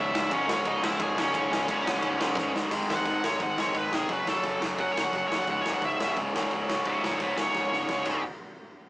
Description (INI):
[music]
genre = punk rock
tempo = 174 BPM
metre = 4/4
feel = straight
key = C# minor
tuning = A4 = 440 Hz
[part]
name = high-gain lead guitar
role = melody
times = 0.0-8.2 s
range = C#4 to G#5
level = -30 LUFS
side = equal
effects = distortion
[part]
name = distorted electric guitar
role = riff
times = 0.0-8.2 s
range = C#2 to G#3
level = -31 LUFS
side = right 1 dB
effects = distortion
[part]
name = raw garage guitar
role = riff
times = 0.0-8.2 s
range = C#2 to G#3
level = -31 LUFS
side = left 1 dB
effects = overdrive
[part]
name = picked electric bass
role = bass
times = 0.0-8.2 s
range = C#1 to G#1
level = -45 LUFS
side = equal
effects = none
[part]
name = raw garage drum kit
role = drums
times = 0.1-8.1 s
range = crash cymbal, hi-hat, kick drum, ride cymbal, snare drum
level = -32 LUFS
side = equal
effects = none
[sound]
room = light reverb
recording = rough rehearsal-room recording, warm saturation, small speaker sound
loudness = -25 LUFS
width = side -20 dB against mid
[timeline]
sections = 0.0-2.7 A section; 2.7-8.2 B section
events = drum fill 2.4-2.7, 7.5-8.2; lead electric guitar solo 2.7-8.2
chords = 0.0 C#m; 2.7 G#5; 4.1 F#m; 5.5 C#m; 8.2 N.C.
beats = 0.30 0.65 0.99 | 1.34 1.68 2.02 2.37 | 2.71 3.06 3.40 3.75 | 4.09 4.43 4.78 5.12 | 5.47 5.82 6.16 6.51 | 6.85 7.20 7.54 7.89